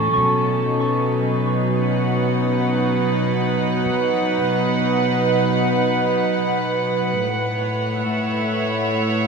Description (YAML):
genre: ambient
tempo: free time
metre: none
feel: none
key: B mixolydian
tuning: A4 = 440 Hz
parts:
  - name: dark studio string section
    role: sustained chords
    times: 0.0-9.3 s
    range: A2 to F#5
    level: -18 LUFS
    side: right 1 dB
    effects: shimmer reverb
  - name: mellow tine electric piano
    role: arpeggios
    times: 0.0-3.8 s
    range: C#6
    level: -26 LUFS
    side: equal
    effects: dub echo, shimmer reverb
room: wet plate reverb, RT60 2.7 s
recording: echo-heavy mix, cassette tape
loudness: -18 LUFS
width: side -5 dB against mid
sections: 0.2-9.3 A section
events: none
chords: 0.2 B; 7.2 A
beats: free time